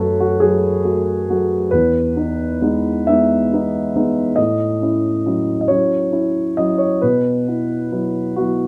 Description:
neoclassical minimalist piano; 46 BPM (dotted quarters); 6/8; rubato; E major; A4 = 439 Hz
warm concert grand piano; solo; 0.0-8.7 s; E2 to E5; -18 LUFS; equal
moderate studio reverb, RT60 0.6 s; rough home demo mix; -18 LUFS; mono
0.0-8.7 A section
0.0 F#madd9; 1.7 Emaj7; 4.4 A6; 7.0 Bsus4

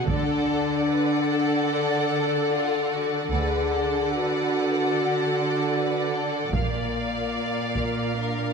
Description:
cinematic, epic orchestral film score; 74 BPM; 4/4; straight; A4 = 440 Hz
rich symphonic violin section; melody; 0.0-8.5 s; F4 to D5; -34 LUFS; left 3 dB
warm symphonic violin section; second line; 0.0-8.5 s; D5 to F#5; -30 LUFS; left 2 dB
rich studio viola section; accompaniment; 0.0-8.5 s; A4 to D5; -31 LUFS; right 1 dB
mellow French horn section; sustained chords; 0.0-8.5 s; Bb3 to A4; -26 LUFS; left 3 dB
rich symphonic cello section; bass; 0.0-8.5 s; Bb2 to D3; -29 LUFS; right 4 dB
warm symphonic double bass section; bass; 0.1-7.3 s; Bb1 to D2; -31 LUFS; right 4 dB
solo taiko drums; drums; 0.1-1.7, 6.5-8.1 s; -30 LUFS; right 1 dB
moderate concert hall reverb, RT60 2.1 s; close, detailed microphones; -22 LUFS; side -5 dB against mid
0.0-8.5 A section
0.1 D; 6.5 Bb

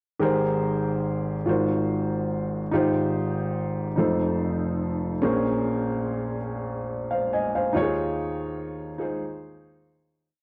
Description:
gospel; 48 BPM (dotted quarters); 6/8; straight; Ab major; A4 = 441 Hz
warm upright piano; solo; 0.2-10.3 s; F1 to Ab5; -26 LUFS; equal; cassette tape
moderate studio reverb, RT60 0.5 s; home recording on cassette, nothing above 10.4 kHz; -26 LUFS; mono
0.2-10.3 verse
fade-out 7.7-10.3
0.2 Abmaj9; 1.5 Ab13; 2.7 Fm9/Ab; 4.0 F7; 5.2 Bbm9; 7.7 Eb9sus4

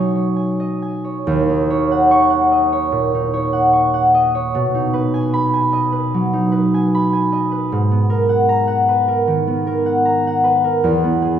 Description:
classical, solo harp piece; 75 BPM; 4/4; rubato; A4 = 440 Hz
concert harp; solo; 0.0-11.4 s; D#2 to C#6; -14 LUFS; equal
wet concert hall reverb, RT60 2.0 s; heard from further back in the room; -14 LUFS; side -9 dB against mid
0.0-1.3 A section; 1.3-11.4 B section
0.0 B69; 1.3 D#m7; 4.5 B6; 7.7 G#m9; 10.8 Emaj7

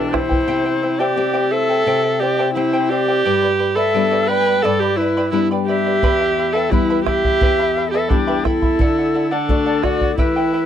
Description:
andean folk, Andean ensemble; 86 BPM; 2/4; straight; A4 = 441 Hz
warm viola; melody; 0.0-10.7 s; D4 to B4; -18 LUFS; right 3 dB
breathy bright large quena; second line; 0.0-10.7 s; G4 to G5; -23 LUFS; left 8 dB
charango; accompaniment; 0.0-10.7 s; E4 to B5; -24 LUFS; equal
nylon-string guitar; accompaniment; 0.0-10.7 s; E2 to G4; -24 LUFS; left 10 dB
bombo; percussion; 0.1-0.5, 6.0-10.3 s; -20 LUFS; right 1 dB
little or no reverb; dry, close 1970s-style studio recording; -15 LUFS; side -9 dB against mid
0.5-10.7 A section
0.5 C; 3.3 G; 6.0 Em; 8.8 D

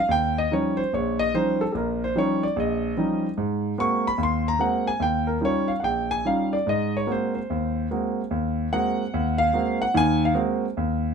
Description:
solo jazz; 146 BPM; 4/4; swing 67% on 8ths, rubato; A4 = 440 Hz
warm concert grand piano; solo; 0.0-11.1 s; Bb1 to Db6; -22 LUFS; equal
moderate club reverb, RT60 0.7 s; minimal, uncompressed stereo recording; -22 LUFS; side -6 dB against mid
0.1-11.1 A section
grand piano solo 0.0-11.1
0.1 Eb9; 3.4 Ab9; 5.0 Eb9; 6.7 Ab9

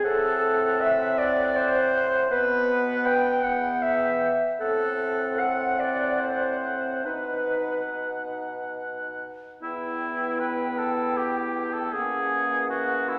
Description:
classical, slow romantic movement for wind quintet; 46-54 BPM (dotted quarters); 6/8; rubato; E minor; A4 = 440 Hz
hollow concert flute; melody; 0.0-13.2 s; A4 to G5; -34 LUFS; equal
warm oboe; second line; 0.0-13.2 s; E4 to G5; -32 LUFS; equal
warm French horn; accompaniment; 0.0-13.2 s; A#3 to D#4; -34 LUFS; equal
warm clarinet; accompaniment; 0.0-13.2 s; C#4 to G5; -29 LUFS; equal
mellow bassoon; bass; 0.0-13.2 s; E2 to B2; -37 LUFS; equal
wet concert hall reverb, RT60 2.1 s; -25 LUFS; mono
0.0-9.6 A section; 9.6-13.2 B section
0.0 F#dim/A; 2.3 B5; 3.4 Em; 4.6 F#dim/A; 7.1 B; 9.6 Em; 11.9 F#7/E

